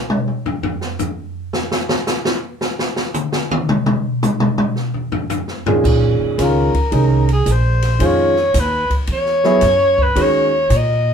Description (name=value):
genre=jazz, small-group swing and bop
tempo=111 BPM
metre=4/4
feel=swing 67% on 8ths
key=Bb minor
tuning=A4 = 440 Hz
part: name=open jazz drum kit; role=drums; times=0.1-10.9 s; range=crash cymbal, hi-hat, kick drum, ride cymbal, snare drum, toms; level=-20 LUFS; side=left 1 dB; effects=none
part: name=warm grand piano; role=accompaniment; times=5.7-10.5 s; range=Bb2 to Ab4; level=-17 LUFS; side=right 1 dB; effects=none
part: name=upright bass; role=bass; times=5.8-11.1 s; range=Bb1 to Bb2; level=-18 LUFS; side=equal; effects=none
part: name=breathy alto saxophone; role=melody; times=6.4-11.1 s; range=Ab4 to Eb5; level=-16 LUFS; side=equal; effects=none
room=moderate small room reverb, RT60 0.5 s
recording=band playing live in one room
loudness=-15 LUFS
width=side -7 dB against mid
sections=0.0-5.8 A section; 5.8-11.1 A section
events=alto saxophone solo 0.0-11.1; drum solo 0.0-5.8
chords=0.0 N.C.; 1.5 Bbm7; 5.8 Bbm9; 8.0 Db9; 9.1 Eadd9; 10.2 Ebm11